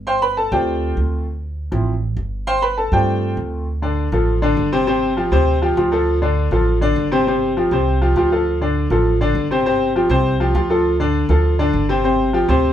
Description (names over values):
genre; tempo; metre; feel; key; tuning
latin, salsa; 201 BPM; 4/4; straight; unclear; A4 = 441 Hz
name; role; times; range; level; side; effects
upright bass; bass; 0.0-12.7 s; G1 to G2; -20 LUFS; right 1 dB; none
clear baby grand piano; accompaniment; 0.1-12.7 s; C3 to C6; -17 LUFS; left 1 dB; none
room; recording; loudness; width
moderate studio ambience, RT60 0.4 s; band playing live in one room; -15 LUFS; side -10 dB against mid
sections
0.0-3.7 A section; 3.7-12.7 B section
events
grand piano solo 0.0-3.7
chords
0.0 G7sus4; 1.3 Dm7; 2.5 G7sus4